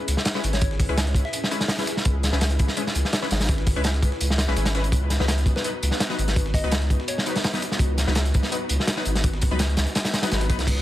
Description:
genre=drum and bass, jungle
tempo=167 BPM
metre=4/4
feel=straight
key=unclear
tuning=A4 = 440 Hz
part: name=airy breathy pad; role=sustained chords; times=0.0-10.8 s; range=B3 to B4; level=-34 LUFS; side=left 1 dB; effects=chorus, vintage 12-bit sampler grit
part: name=saturated sub bass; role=bass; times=0.1-10.8 s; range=G#1 to C#2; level=-24 LUFS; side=equal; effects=tube saturation
part: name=crunchy breakbeat drum kit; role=drums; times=0.1-10.8 s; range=crash cymbal, hi-hat, kick drum, snare drum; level=-23 LUFS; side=equal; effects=none
part: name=dusty soul sampler-style drum kit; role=drums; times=0.1-10.8 s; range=hi-hat, snare drum, tambourine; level=-35 LUFS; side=equal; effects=high-pass filter on perc, high-pass filter on snare, high-pass filter on hats
part: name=orchestra-hit-like synth stab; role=stabs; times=0.3-10.6 s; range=F#3 to B4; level=-31 LUFS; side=left 2 dB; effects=built-in reverb, dub echo
part: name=soft struck synth lead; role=melody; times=0.5-1.4, 5.6-7.4 s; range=B4 to E5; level=-35 LUFS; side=left 2 dB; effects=chorus, dub echo
room=studio reverb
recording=dense, heavily limited modern master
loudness=-20 LUFS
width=side -14 dB against mid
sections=0.0-10.7 A section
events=drop 0.0-10.7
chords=0.0 C#m7; 4.9 B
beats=0.26 | 0.62 0.97 1.33 1.69 | 2.05 2.41 2.77 3.13 | 3.49 3.85 4.21 4.57 | 4.93 5.29 5.65 6.00 | 6.36 6.72 7.08 7.44 | 7.80 8.16 8.52 8.88 | 9.24 9.60 9.96 10.32 | 10.68

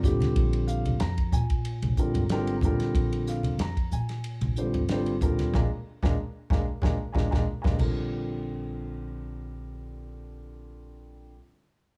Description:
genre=electric jazz fusion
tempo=93 BPM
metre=4/4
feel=swing 54% on 16ths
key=Bb mixolydian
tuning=A4 = 440 Hz
part: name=warm concert grand piano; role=accompaniment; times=0.0-11.4 s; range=D3 to Bb5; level=-34 LUFS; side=equal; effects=plate reverb
part: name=upright bass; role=bass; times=0.0-11.4 s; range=Ab1 to Bb2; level=-32 LUFS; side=equal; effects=none
part: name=damped 70s drum kit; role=drums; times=0.0-8.0 s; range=crash cymbal, hi-hat, kick drum, ride cymbal, snare drum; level=-32 LUFS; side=equal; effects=none
part: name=congas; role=percussion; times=0.0-8.4 s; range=none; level=-33 LUFS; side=equal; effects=none
room=light reverb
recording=small room ambience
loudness=-27 LUFS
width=mono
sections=0.0-8.1 A section; 8.1-10.7 B section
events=band accent 5.5-8.1; drum fill 6.8-8.1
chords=0.0 Bb9; 7.8 Bbadd9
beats=| 0.36 1.00 1.65 2.30 | 2.94 3.59 4.24 4.88 | 5.53 6.18 6.83 7.47 | 8.12 8.77 9.41 10.06

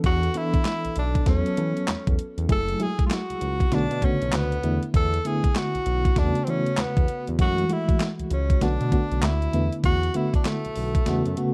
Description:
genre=R&B, new jack swing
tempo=98 BPM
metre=4/4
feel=swing 63% on 16ths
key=unclear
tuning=A4 = 439 Hz
part: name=FM electric piano with tremolo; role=accompaniment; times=0.0-11.5 s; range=C#3 to A4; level=-29 LUFS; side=equal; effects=none
part: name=smooth synth bass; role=bass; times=0.0-11.4 s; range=F#1 to E3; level=-29 LUFS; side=equal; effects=none
part: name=clean 12-bit digital drum machine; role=drums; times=0.0-11.5 s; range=handclaps, hi-hat, kick drum, snare drum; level=-26 LUFS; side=equal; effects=overdrive
part: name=bright tenor saxophone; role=melody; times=0.1-11.5 s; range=A3 to A4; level=-31 LUFS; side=equal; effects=none
room=moderate studio reverb, RT60 0.6 s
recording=dark, warm production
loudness=-24 LUFS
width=mono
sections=0.0-11.5 A section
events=kick muted 11.1-11.5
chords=0.0 E7sus4; 1.3 A69/E; 2.5 F#m9; 3.7 Bm7; 4.6 E7sus4; 6.2 A69/E; 7.4 F#m9; 8.6 Bm7; 9.5 E7sus4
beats=| 0.04 0.65 1.27 1.88 | 2.49 3.10 3.71 4.33 | 4.94 5.55 6.16 6.78 | 7.39 8.00 8.61 9.22 | 9.84 10.45 11.06

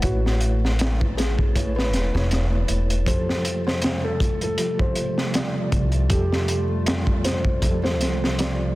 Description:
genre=trip hop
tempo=79 BPM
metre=4/4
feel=swing 55% on 16ths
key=unclear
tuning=A4 = 441 Hz
part: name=felt-muted upright piano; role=melody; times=0.0-8.8 s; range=F#4 to C5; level=-30 LUFS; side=equal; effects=tape echo
part: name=mellow tine electric piano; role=accompaniment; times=0.0-8.8 s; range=F3 to F#5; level=-29 LUFS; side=equal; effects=tremolo, low-pass filter
part: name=upright bass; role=bass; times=0.0-8.7 s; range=E1 to F2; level=-24 LUFS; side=equal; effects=none
part: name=crunchy breakbeat drum kit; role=drums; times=0.0-8.6 s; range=hi-hat, kick drum, snare drum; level=-24 LUFS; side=equal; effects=none
part: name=flickering grainy texture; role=texture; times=0.0-8.8 s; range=A3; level=-38 LUFS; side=right 1 dB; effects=none
part: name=warbly tape-like pad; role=sustained chords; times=3.6-8.8 s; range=C3 to F4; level=-30 LUFS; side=right 2 dB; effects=chorus, built-in reverb, vintage 12-bit sampler grit
room=small room ambience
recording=dense, heavily limited modern master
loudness=-20 LUFS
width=side -18 dB against mid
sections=0.0-8.8 A section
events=none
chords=0.0 Aadd9; 3.1 Fadd9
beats=| 0.03 0.79 1.55 2.31 | 3.07 3.83 4.59 5.35 | 6.11 6.87 7.62 8.38

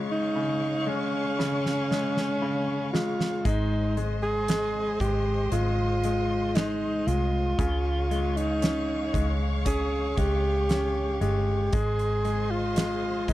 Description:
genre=pop ballad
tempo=58 BPM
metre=4/4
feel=straight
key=unclear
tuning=A4 = 445 Hz
part: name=warm alto saxophone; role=melody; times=0.0-13.3 s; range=Db4 to Ab4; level=-28 LUFS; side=right 1 dB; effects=slapback echo
part: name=bright grand piano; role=accompaniment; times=0.0-13.3 s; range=Db3 to Db4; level=-31 LUFS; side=left 4 dB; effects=none
part: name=warm studio string section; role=sustained chords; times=0.0-13.3 s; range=Ab3 to Db6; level=-36 LUFS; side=left 1 dB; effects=none
part: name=huge arena drum kit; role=drums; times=1.4-13.3 s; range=hi-hat, kick drum, snare drum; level=-29 LUFS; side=right 1 dB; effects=none
part: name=vintage muted fingered electric bass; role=bass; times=3.5-13.3 s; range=G1 to Db2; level=-29 LUFS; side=equal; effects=none
room=little or no reverb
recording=dry, close 1970s-style studio recording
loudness=-24 LUFS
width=side -15 dB against mid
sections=0.0-13.3 A section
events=drum fill 1.4-3.5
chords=0.0 Db; 3.5 Ab; 7.6 Db; 11.7 Ab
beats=0.35 1.38 2.42 | 3.45 4.49 5.52 6.56 | 7.59 8.62 9.66 10.69 | 11.73 12.76

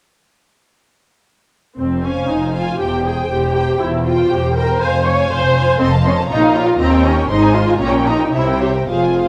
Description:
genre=quick classical-period movement for string orchestra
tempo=119 BPM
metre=2/4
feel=rubato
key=F minor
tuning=A4 = 442 Hz
part: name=warm symphonic viola section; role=accompaniment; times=1.8-9.3 s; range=C4 to Db5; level=-18 LUFS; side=equal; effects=none
part: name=dark symphonic cello section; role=bass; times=1.8-9.3 s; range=Eb2 to C3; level=-24 LUFS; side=equal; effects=none
part: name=warm symphonic double bass section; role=bass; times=1.8-9.3 s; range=E1 to Eb2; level=-23 LUFS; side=equal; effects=none
part: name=warm symphonic violin section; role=melody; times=2.0-9.3 s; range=E5 to C6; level=-27 LUFS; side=equal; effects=none
part: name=clear symphonic violin section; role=second line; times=2.0-9.3 s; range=F4 to G5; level=-26 LUFS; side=equal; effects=none
room=wet recital hall reverb, RT60 1.6 s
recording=none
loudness=-16 LUFS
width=mono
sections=1.8-9.3 A section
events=none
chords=1.8 Fm; 2.8 C/E; 4.8 Fm; 5.8 F7; 6.3 Bbm; 6.8 Eb7; 7.3 Ab; 7.8 Gdim/Bb; 8.3 C7b9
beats=| 1.78 2.30 | 2.81 3.31 | 3.82 4.32 | 4.82 5.32 | 5.81 6.32 | 6.81 7.30 | 7.81 8.34 | 8.89

